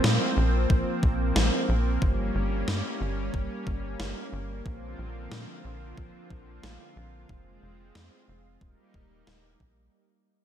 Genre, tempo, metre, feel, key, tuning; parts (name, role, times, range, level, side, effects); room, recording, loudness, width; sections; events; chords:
synthwave; 91 BPM; 4/4; straight; A4 = 440 Hz
lush unison pad; sustained chords; 0.0-9.9 s; D3 to F4; -32 LUFS; equal; chorus, sidechain pumping
tight sequencer bass; bass; 0.0-9.9 s; Eb1 to Bb2; -28 LUFS; equal
electronic snare drum; drums; 0.0-9.4 s; -30 LUFS; equal; gated reverb, gated reverb snare
electronic kick drum; drums; 0.7-9.7 s; -28 LUFS; equal
little or no reverb; -25 LUFS; side -10 dB against mid
0.0-9.9 A section
fade-out 0.0-9.9
0.0 Bbsus2; 2.0 Gdim; 4.7 Bbadd9; 7.3 Fm; 8.6 Eb